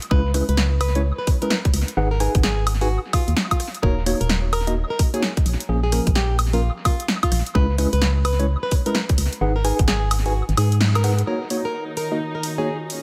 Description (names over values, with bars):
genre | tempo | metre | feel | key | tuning
UK garage, two-step garage | 129 BPM | 4/4 | swing 63% on 16ths | Eb minor | A4 = 440 Hz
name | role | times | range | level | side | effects
punchy analog drum machine | drums | 0.0-13.0 s | hi-hat, rim click, snare drum, woodblock | -28 LUFS | equal | overdrive, tape echo
flamenco guitar | melody | 0.1-12.8 s | F4 to Cb5 | -31 LUFS | equal | tape echo
mellow tine electric piano | stabs | 0.1-12.7 s | F3 to Ab5 | -29 LUFS | equal | low-pass filter, tape echo
organ-like FM bass | bass | 0.1-11.2 s | Eb1 to Ab2 | -23 LUFS | equal | none
electronic kick drum | drums | 0.1-9.9 s | none | -22 LUFS | equal | none
soft string machine | sustained chords | 11.8-13.0 s | Bb2 to Db5 | -35 LUFS | equal | ensemble chorus, sidechain pumping
muted studio string section | texture | 11.3-13.0 s | Db4 to Eb4 | -35 LUFS | equal | sidechain pumping
room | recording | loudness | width
light reverb | echo-heavy mix | -21 LUFS | mono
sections
0.0-11.3 A section; 11.3-13.0 B section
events
kick drops out 10.3-11.3; band accent 10.8; filter sweep on tine electric piano 11.3-13.0; filter sweep on string machine 11.3-13.0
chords
0.1 Dbm7; 2.0 Abm; 3.8 Ebm7; 5.5 Bbm; 7.6 Dbm7; 9.4 Abm7; 11.3 Ebm7